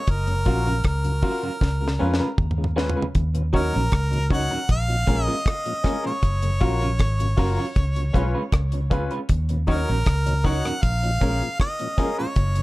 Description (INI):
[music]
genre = roots reggae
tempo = 78 BPM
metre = 4/4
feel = straight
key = Eb minor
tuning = A4 = 440 Hz
[part]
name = breathy harmonica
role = melody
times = 0.0-12.6 s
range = Bb4 to Gb5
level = -28 LUFS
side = right 1 dB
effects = tape echo
[part]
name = vintage muted fingered electric bass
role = bass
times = 0.1-12.6 s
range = Gb1 to F2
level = -23 LUFS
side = equal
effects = none
[part]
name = deep reggae drum kit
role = drums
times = 0.1-12.6 s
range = hi-hat, kick drum, rim click, snare drum, toms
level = -22 LUFS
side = equal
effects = none
[part]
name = mellow tonewheel organ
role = accompaniment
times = 0.3-12.6 s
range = Eb2 to F4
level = -34 LUFS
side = left 1 dB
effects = overdrive, slow rotary speaker, tape echo
[part]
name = electric guitar through a small old amp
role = accompaniment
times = 0.5-12.3 s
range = Gb3 to Cb5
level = -31 LUFS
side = right 3 dB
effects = tape echo
[part]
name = warm baby grand piano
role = stabs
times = 0.5-12.2 s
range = Db4 to Db5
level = -30 LUFS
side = left 4 dB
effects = none
[sound]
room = little or no reverb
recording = dark, warm production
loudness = -20 LUFS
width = side -19 dB against mid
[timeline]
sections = 0.0-3.2 A section; 3.2-12.6 B section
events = drum fill 1.6-3.2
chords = 0.1 Gbmaj7; 1.6 Db7; 3.2 Ebm7; 4.7 Bbm7; 6.2 Gbmaj7; 7.8 Db7; 9.3 Ebm7; 10.8 Bbm7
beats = | 0.08 0.85 1.62 2.39 | 3.15 3.92 4.69 5.46 | 6.23 7.00 7.76 8.53 | 9.30 10.06 10.83 11.60 | 12.37